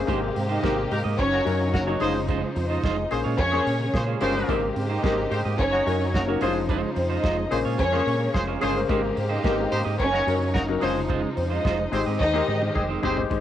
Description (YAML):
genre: disco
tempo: 109 BPM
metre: 4/4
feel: straight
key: Ab major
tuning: A4 = 440 Hz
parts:
  - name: clear grand piano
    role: accompaniment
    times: 0.0-13.4 s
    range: Fb3 to Eb5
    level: -28 LUFS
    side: left 7 dB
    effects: cassette tape
  - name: warm studio string section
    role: sustained chords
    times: 0.0-13.4 s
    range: C3 to C5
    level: -31 LUFS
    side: right 1 dB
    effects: cassette tape
  - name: semi-hollow electric guitar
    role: accompaniment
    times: 0.1-13.4 s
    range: Ab3 to Eb5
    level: -31 LUFS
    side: right 9 dB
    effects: cassette tape
  - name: fingered electric bass with an envelope filter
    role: bass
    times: 0.1-13.4 s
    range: F1 to Bb2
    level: -29 LUFS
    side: right 1 dB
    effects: none
  - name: damped 70s drum kit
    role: drums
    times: 0.1-13.4 s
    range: hi-hat, kick drum, snare drum, toms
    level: -30 LUFS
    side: right 1 dB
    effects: cassette tape
  - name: dark studio string section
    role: second line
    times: 0.4-12.7 s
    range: C4 to Eb5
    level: -27 LUFS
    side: equal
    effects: cassette tape
  - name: bright horn section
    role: stabs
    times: 0.9-13.2 s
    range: C4 to C5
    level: -30 LUFS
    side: equal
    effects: cassette tape
room: light reverb, small room ambience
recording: home recording on cassette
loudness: -21 LUFS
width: side -11 dB against mid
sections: 0.0-13.3 A section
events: drum fill 12.2-13.3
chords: 0.1 Abmaj9; 1.2 Gb6; 2.0 Dbmaj9/F; 3.1 Bbm9; 4.5 Abmaj9; 5.6 Gb6; 6.4 Dbmaj9/F; 7.5 Bbm9; 8.9 Abmaj9; 10.0 Gb6; 10.8 Dbmaj9/F; 11.9 Abmaj7